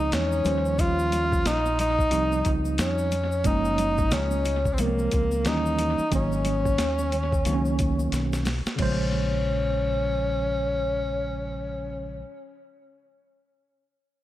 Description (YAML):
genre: hip hop, jazz-hop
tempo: 90 BPM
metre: 4/4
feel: swing 60% on 16ths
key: Bb minor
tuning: A4 = 440 Hz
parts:
  - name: breathy tenor saxophone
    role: melody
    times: 0.0-12.2 s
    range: Bb3 to F4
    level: -26 LUFS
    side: left 1 dB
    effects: analog delay
  - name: mellow tine electric piano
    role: accompaniment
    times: 0.0-12.3 s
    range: Db3 to C5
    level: -29 LUFS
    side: right 2 dB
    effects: overdrive, fast stereo tremolo
  - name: deep dub fingered electric bass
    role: bass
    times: 0.0-12.2 s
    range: Gb1 to F2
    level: -28 LUFS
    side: equal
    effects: none
  - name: boom bap sampler-style drum kit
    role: drums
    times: 0.1-9.0 s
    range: crash cymbal, hi-hat, kick drum, snare drum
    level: -29 LUFS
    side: equal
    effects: analog delay
  - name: tube shaker and congas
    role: percussion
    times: 0.1-9.1 s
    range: none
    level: -39 LUFS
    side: left 2 dB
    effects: analog delay
room: light reverb, digital ambience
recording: echo-heavy mix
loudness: -22 LUFS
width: side -14 dB against mid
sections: 0.0-8.8 A section; 8.8-11.5 B section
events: drum fill 8.1-8.8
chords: 0.5 Eb13; 3.5 Gbmaj7; 5.5 Eb7b9; 6.1 Ab7sus4; 8.8 Bbm7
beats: 0.12 | 0.79 1.46 2.12 2.79 | 3.46 4.12 4.79 5.46 | 6.12 6.79 7.46 8.12 | 8.79 9.46 10.12 10.79